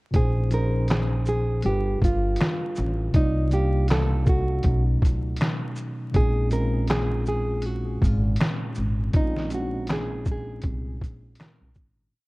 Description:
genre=lo-fi hip hop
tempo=80 BPM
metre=4/4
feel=swing 56% on 16ths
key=Bb minor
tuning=A4 = 440 Hz
part: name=mellow tine electric piano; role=accompaniment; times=0.1-12.2 s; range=Bb2 to F5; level=-28 LUFS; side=equal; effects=medium stereo tremolo, cassette tape, low-pass filter
part: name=upright bass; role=bass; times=0.1-12.1 s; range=G1 to C#2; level=-26 LUFS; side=equal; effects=none
part: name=lo-fi sampler-style drum kit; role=drums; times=0.1-12.0 s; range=handclaps, hi-hat, kick drum, shaker, snare drum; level=-24 LUFS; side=equal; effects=none
part: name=nylon-string guitar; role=melody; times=0.2-11.7 s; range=Eb4 to Bb4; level=-29 LUFS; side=right 2 dB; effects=low-pass filter
room=light reverb, digital ambience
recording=dark, warm production, vinyl crackle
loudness=-21 LUFS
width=side -22 dB against mid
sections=0.1-12.1 A section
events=fade-out 9.1-12.1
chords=0.1 Bbm11; 1.6 G7; 3.1 Cm11; 4.6 B9; 6.1 Bbm11

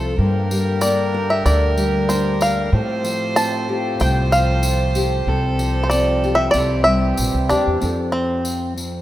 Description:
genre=acoustic folk duo or small band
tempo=94 BPM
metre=4/4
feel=straight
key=F major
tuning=A4 = 437 Hz
part: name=warm fiddle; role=second line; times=0.0-7.5 s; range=G4 to C5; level=-26 LUFS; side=right 3 dB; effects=none
part: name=nylon-string guitar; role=accompaniment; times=0.0-9.0 s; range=F2 to Bb4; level=-23 LUFS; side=left 2 dB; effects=none
part: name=hand-pumped harmonium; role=sustained chords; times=0.0-7.8 s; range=C3 to G4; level=-27 LUFS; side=equal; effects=none
part: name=upright bass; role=bass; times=0.0-9.0 s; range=Bb1 to A2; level=-21 LUFS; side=equal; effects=none
part: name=tambourine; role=percussion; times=0.5-8.9 s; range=none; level=-32 LUFS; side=left 2 dB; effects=none
part: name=bluegrass banjo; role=melody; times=0.8-8.7 s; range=C4 to A5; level=-20 LUFS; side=equal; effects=none
room=moderate lush hall reverb, RT60 2.1 s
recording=rough home demo mix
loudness=-16 LUFS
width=side -14 dB against mid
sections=0.0-7.8 A section; 7.8-9.0 B section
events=none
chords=0.2 Gm; 2.7 Fadd9/A; 5.3 Csus4; 6.5 C; 7.8 F

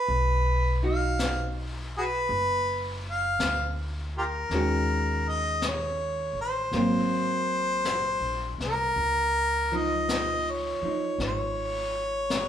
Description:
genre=jazz ballad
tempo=54 BPM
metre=4/4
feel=swing 66% on 8ths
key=unclear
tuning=A4 = 441 Hz
part: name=mellow harmonica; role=melody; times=0.0-12.5 s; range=F4 to F5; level=-27 LUFS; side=equal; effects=none
part: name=archtop guitar, miked and amplified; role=accompaniment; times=0.0-12.5 s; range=Eb3 to F#4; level=-30 LUFS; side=right 1 dB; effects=none
part: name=upright bass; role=bass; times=0.1-12.5 s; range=F#1 to Eb2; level=-31 LUFS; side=equal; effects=none
part: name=jazz brush drum kit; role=drums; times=0.1-12.5 s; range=brushed snare drum, hi-hat, snare drum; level=-35 LUFS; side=left 3 dB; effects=none
room=wet large studio reverb, RT60 1.1 s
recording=band playing live in one room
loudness=-25 LUFS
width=side -9 dB against mid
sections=0.0-12.5 A section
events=none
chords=0.1 B; 4.5 Ebm7; 6.7 Ab9; 9.0 Dbadd9

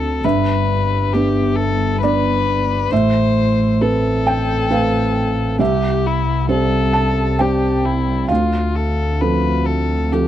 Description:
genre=neoclassical piano and strings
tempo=67 BPM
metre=3/4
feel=rubato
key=A minor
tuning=A4 = 440 Hz
part: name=muted violin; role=melody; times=0.0-10.3 s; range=E4 to C5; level=-21 LUFS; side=left 7 dB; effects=none
part: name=felt-muted upright piano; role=accompaniment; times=0.0-10.3 s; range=C2 to A5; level=-18 LUFS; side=right 2 dB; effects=none
part: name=muted double bass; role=bass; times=0.0-10.3 s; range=G1 to D2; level=-21 LUFS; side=equal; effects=none
room=light reverb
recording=dry, close 1970s-style studio recording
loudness=-15 LUFS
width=side -12 dB against mid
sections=0.0-10.3 A section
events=none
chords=0.2 G; 2.9 Amadd9; 5.6 C; 8.3 Dm7

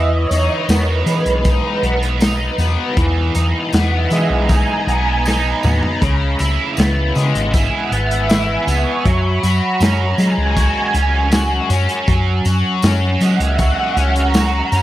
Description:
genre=psychedelic rock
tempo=79 BPM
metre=4/4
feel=straight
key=E lydian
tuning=A4 = 440 Hz
part: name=soft string machine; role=sustained chords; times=0.0-14.8 s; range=A#4 to C#6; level=-22 LUFS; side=right 4 dB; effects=phaser, ensemble chorus
part: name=overdriven electric guitar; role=riff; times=0.0-14.8 s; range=C#3 to F#4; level=-19 LUFS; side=left 1 dB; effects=rotary speaker
part: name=hollow-body short-scale fingered electric bass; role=bass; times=0.0-14.8 s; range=G#1 to F#3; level=-17 LUFS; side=equal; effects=none
part: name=crunchy breakbeat drum kit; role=drums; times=0.3-14.8 s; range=hi-hat, kick drum, snare drum, toms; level=-18 LUFS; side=equal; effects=none
part: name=tambourine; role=percussion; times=0.3-14.8 s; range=none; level=-34 LUFS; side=left 3 dB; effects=none
room=light reverb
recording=none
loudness=-14 LUFS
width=side -14 dB against mid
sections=0.0-14.8 A section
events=string machine solo 0.0-14.8; drum fill 5.3-6.0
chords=0.0 Emaj7; 6.0 C#m7; 9.1 F#sus2

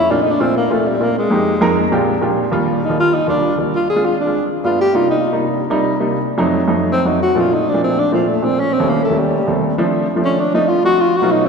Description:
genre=jazz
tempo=199 BPM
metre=4/4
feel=straight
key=Bb major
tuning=A4 = 440 Hz
part: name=breathy tenor saxophone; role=melody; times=0.0-11.5 s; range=F3 to Ab4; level=-16 LUFS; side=equal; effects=none
part: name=warm baby grand piano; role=accompaniment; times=0.1-11.4 s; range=Eb2 to Bb4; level=-16 LUFS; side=right 1 dB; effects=none
room=wet church reverb, RT60 3.6 s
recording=recorded in a church or concert hall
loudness=-14 LUFS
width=side -5 dB against mid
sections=0.0-2.5 A section; 2.5-11.5 A section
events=tenor saxophone solo 0.0-11.5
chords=0.1 Bbmaj9; 1.3 Fm7; 1.9 Bb13; 2.5 Ebmaj7; 3.7 Dm7b5; 4.3 G7; 4.9 Cm7; 6.2 F7b9; 7.4 Bbmaj7; 8.6 Eb7#11; 9.8 Dm7; 11.0 B7#11

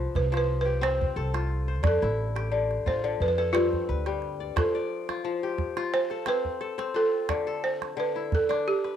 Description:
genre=west african traditional, West African string and xylophone music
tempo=88 BPM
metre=4/4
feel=swing 54% on 16ths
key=F lydian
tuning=A4 = 440 Hz
part: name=balafon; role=melody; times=0.0-9.0 s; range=F4 to C5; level=-27 LUFS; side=right 2 dB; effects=none
part: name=kora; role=arpeggios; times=0.0-9.0 s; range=G2 to D5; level=-30 LUFS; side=left 6 dB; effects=cassette tape
part: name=upright bass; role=bass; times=0.0-4.5 s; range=A1 to F2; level=-29 LUFS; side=equal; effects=none
part: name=calabash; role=percussion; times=0.2-8.9 s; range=none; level=-31 LUFS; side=right 3 dB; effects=none
room=moderate spring reverb, RT60 1.2 s, small room ambience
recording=home recording on cassette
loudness=-25 LUFS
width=side -9 dB against mid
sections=0.0-4.6 A section; 4.6-9.0 B section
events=none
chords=0.0 F; 1.8 Dm; 3.2 G/F; 4.6 F; 7.3 Dm

